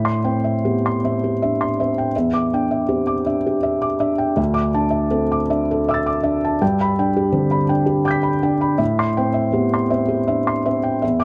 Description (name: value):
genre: neoclassical minimalist piano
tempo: 54 BPM (dotted quarters)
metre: 6/8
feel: rubato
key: A minor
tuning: A4 = 440 Hz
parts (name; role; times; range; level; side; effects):
- felt-muted upright piano; solo; 0.0-11.2 s; D2 to B6; -19 LUFS; equal; none
room: light reverb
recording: close, detailed microphones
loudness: -19 LUFS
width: mono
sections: 0.0-11.2 A section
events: none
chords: 0.0 Am7; 2.1 Em7; 4.4 Dsus2; 6.6 G; 8.8 Am7